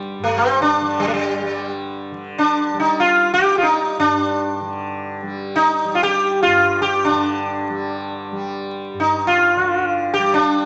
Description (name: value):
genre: indian classical, Hindustani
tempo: free time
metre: none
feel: none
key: unclear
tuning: A4 = 440 Hz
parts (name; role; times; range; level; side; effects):
- tanpura; drone; 0.0-10.7 s; G2 to G3; -30 LUFS; equal; none
- sitar; melody; 0.2-10.7 s; G3 to G4; -19 LUFS; equal; none
room: wet large studio reverb, RT60 1.4 s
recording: vinyl crackle, nothing above 7.9 kHz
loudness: -19 LUFS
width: mono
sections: 0.0-2.1 A section; 2.1-10.7 A section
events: none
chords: none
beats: free time